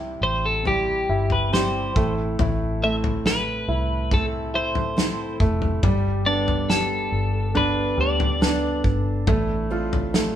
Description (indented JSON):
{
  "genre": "pop ballad",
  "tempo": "70 BPM",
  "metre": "4/4",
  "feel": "straight",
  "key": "A minor",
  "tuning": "A4 = 438 Hz",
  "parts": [
    { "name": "clear baby grand piano", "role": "accompaniment", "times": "0.0-10.4 s", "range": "C3 to F4", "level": "-27 LUFS", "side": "right 2 dB", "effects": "none" },
    { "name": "fingerpicked steel-string acoustic guitar", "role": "arpeggios", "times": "0.0-10.4 s", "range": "A2 to A4", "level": "-30 LUFS", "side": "left 1 dB", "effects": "none" },
    { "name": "vintage muted fingered electric bass", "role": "bass", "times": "0.0-10.4 s", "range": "F1 to D2", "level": "-26 LUFS", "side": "equal", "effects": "none" },
    { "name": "twelve-string electric guitar", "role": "melody", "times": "0.2-8.8 s", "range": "G4 to E5", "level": "-24 LUFS", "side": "left 1 dB", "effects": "none" },
    { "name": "loose indie drum kit", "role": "drums", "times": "0.7-10.3 s", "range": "kick drum, snare drum, toms", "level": "-24 LUFS", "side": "equal", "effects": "none" }
  ],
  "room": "moderate studio reverb, RT60 1.0 s",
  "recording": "band playing live in one room",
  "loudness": "-20 LUFS",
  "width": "side -10 dB against mid",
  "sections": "0.0-10.4 A section",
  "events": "none",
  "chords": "0.0 C; 2.0 Am; 5.8 Gadd9; 9.3 F6/A"
}